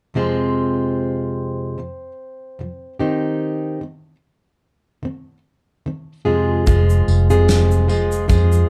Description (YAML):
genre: acoustic pop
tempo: 74 BPM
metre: 4/4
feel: swing 55% on 16ths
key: unclear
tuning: A4 = 440 Hz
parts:
  - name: fingerpicked plugged-in steel-string acoustic guitar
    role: accompaniment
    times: 0.1-8.7 s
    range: F2 to Ab4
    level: -22 LUFS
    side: equal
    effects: none
  - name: vintage muted fingered electric bass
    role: bass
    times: 6.7-8.6 s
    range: F1 to F2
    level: -17 LUFS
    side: equal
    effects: none
  - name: modern studio drum kit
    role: drums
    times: 6.7-8.7 s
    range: kick drum, shaker, snare drum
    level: -23 LUFS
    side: equal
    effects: none
  - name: tambourine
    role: percussion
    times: 6.7-8.5 s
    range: none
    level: -38 LUFS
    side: equal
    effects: none
room: light reverb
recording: dark, warm production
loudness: -18 LUFS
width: mono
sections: 0.1-6.7 A section; 6.7-8.7 B section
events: none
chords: 0.1 Fm; 3.0 Cm/Eb; 6.3 Fm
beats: | 0.14 0.96 1.78 2.59 | 3.41 4.23 5.04 5.86 | 6.67 7.48 8.30